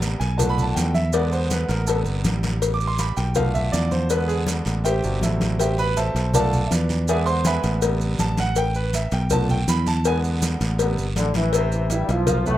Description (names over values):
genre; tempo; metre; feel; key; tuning
latin, salsa; 162 BPM; 4/4; straight; A minor; A4 = 440 Hz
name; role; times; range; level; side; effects
bright concert grand piano; accompaniment; 0.0-12.6 s; B2 to D6; -25 LUFS; right 2 dB; plate reverb
fingered electric bass; bass; 0.0-12.6 s; G1 to E2; -22 LUFS; equal; none
congas; percussion; 0.0-12.6 s; none; -27 LUFS; equal; none
cowbell; percussion; 0.0-12.5 s; none; -28 LUFS; left 7 dB; none
guiro; percussion; 0.0-11.5 s; none; -36 LUFS; right 5 dB; none
maracas; percussion; 0.0-12.6 s; none; -32 LUFS; right 7 dB; none
mellow trombone section; melody; 11.2-12.6 s; G2 to F4; -24 LUFS; left 1 dB; plate reverb
room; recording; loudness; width
light reverb; rough home demo mix; -19 LUFS; side -13 dB against mid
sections
0.0-11.5 A section; 11.5-12.6 B section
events
grand piano solo 0.0-11.5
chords
0.4 Bm7b5; 1.1 E7; 1.9 Am7; 3.4 Bm7b5; 4.1 E7; 4.9 Am7; 6.3 Bm7b5; 7.1 E7; 7.8 Am7; 9.3 Bm7b5; 10.0 E7; 10.8 Am7